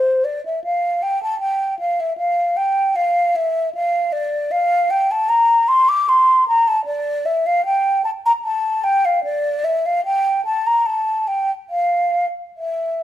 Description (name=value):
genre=classical, baroque-style fantasia for unaccompanied flute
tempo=76 BPM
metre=3/4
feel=rubato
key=unclear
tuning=A4 = 440 Hz
part: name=mellow hollow concert flute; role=solo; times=0.0-13.0 s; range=C5 to D6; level=-16 LUFS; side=equal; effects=none
room=moderate stone room reverb, RT60 0.9 s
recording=heard from further back in the room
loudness=-16 LUFS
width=side -12 dB against mid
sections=0.0-13.0 A section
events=none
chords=none